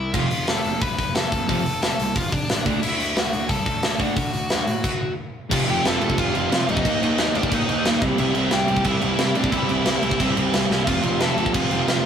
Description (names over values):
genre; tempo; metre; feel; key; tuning
punk rock; 179 BPM; 4/4; straight; unclear; A4 = 440 Hz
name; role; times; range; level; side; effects
biting overdriven guitar; melody; 0.0-12.1 s; D4 to B5; -27 LUFS; left 2 dB; none
fuzz picked electric bass; bass; 0.0-12.0 s; F1 to D3; -30 LUFS; equal; overdrive
distorted electric guitar; riff; 0.1-12.1 s; F2 to Eb4; -27 LUFS; left 4 dB; distortion
sludgy distorted guitar; riff; 0.1-12.1 s; F2 to Eb4; -24 LUFS; right 6 dB; overdrive
tight metal drum kit; drums; 0.1-12.0 s; crash cymbal, hi-hat, kick drum, snare drum; -22 LUFS; equal; none
room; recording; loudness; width
light reverb; rough rehearsal-room recording; -19 LUFS; side -8 dB against mid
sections
0.0-5.5 A section; 5.5-12.1 B section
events
stop 4.8-5.5; drum fill 10.7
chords
0.1 F; 2.7 D; 5.5 F; 6.8 Eb5; 8.0 C; 10.9 F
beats
| 0.14 0.47 0.81 1.15 | 1.48 1.82 2.15 2.49 | 2.82 3.16 3.49 3.83 | 4.17 4.50 4.83 5.17 | 5.50 5.84 6.17 6.51 | 6.84 7.18 7.51 7.85 | 8.18 8.52 8.85 9.19 | 9.52 9.86 10.20 10.53 | 10.87 11.20 11.54 11.88